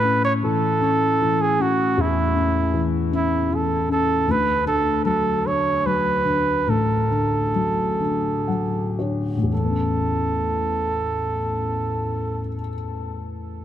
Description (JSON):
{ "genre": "pop", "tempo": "37-52 BPM (dotted quarters)", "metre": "6/8", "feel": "straight", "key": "A major", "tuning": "A4 = 440 Hz", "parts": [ { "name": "clear flugelhorn", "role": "melody", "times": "0.0-12.6 s", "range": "E4 to C#5", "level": "-22 LUFS", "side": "right 3 dB", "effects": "ping-pong delay" }, { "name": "felt-muted upright piano", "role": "accompaniment", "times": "0.0-13.6 s", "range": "A1 to F#5", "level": "-22 LUFS", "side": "left 3 dB", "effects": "none" } ], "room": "light reverb, small room ambience", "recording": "none", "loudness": "-19 LUFS", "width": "side -11 dB against mid", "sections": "0.0-9.5 A section; 9.5-12.8 B section", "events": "slowing down 4.3-9.5; felt piano fill 8.0-9.5", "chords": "0.0 A; 4.3 D; 9.5 Aadd9" }